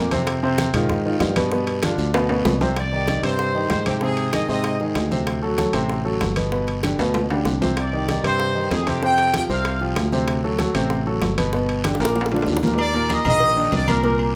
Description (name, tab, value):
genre	latin, salsa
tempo	192 BPM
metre	4/4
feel	straight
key	C harmonic minor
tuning	A4 = 440 Hz
part	warm grand piano	accompaniment	0.0-14.3 s	Bb2 to C5	-25 LUFS	equal	none
part	fingered electric bass	bass	0.0-14.4 s	G1 to Ab2	-27 LUFS	equal	none
part	bongos and cowbell	percussion	0.1-14.2 s	none	-33 LUFS	equal	none
part	congas	percussion	0.1-14.3 s	none	-32 LUFS	equal	none
part	guiro	percussion	0.1-14.4 s	none	-39 LUFS	equal	none
part	timbales and agogo bells	percussion	0.1-14.3 s	none	-30 LUFS	equal	none
part	bright trumpet section	melody	2.8-4.8, 7.8-9.8, 12.8-14.2 s	G4 to G5	-25 LUFS	equal	none
room	moderate large studio reverb, RT60 1.1 s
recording	none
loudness	-21 LUFS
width	mono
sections	0.0-2.8 A section; 2.8-12.8 B section; 12.8-14.4 A section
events	drum fill 2.1-2.8, 7.0-7.8, 11.8-12.8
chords	0.3 Fm7; 1.5 G7; 2.8 Cm; 4.0 Ab; 5.3 D7; 6.5 G; 7.8 Cm; 9.0 Fsus2; 10.3 D7; 11.5 G; 12.2 Bb; 12.8 Eb5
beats	| 0.27 0.58 0.89 1.20 | 1.51 1.83 2.14 2.45 | 2.77 3.08 3.39 3.70 | 4.02 4.33 4.64 4.96 | 5.27 5.58 5.90 6.21 | 6.52 6.84 7.15 7.46 | 7.78 8.09 8.40 8.71 | 9.03 9.34 9.65 9.97 | 10.28 10.59 10.91 11.22 | 11.53 11.85 12.16 12.47 | 12.79 13.10 13.41 13.72 | 14.04 14.35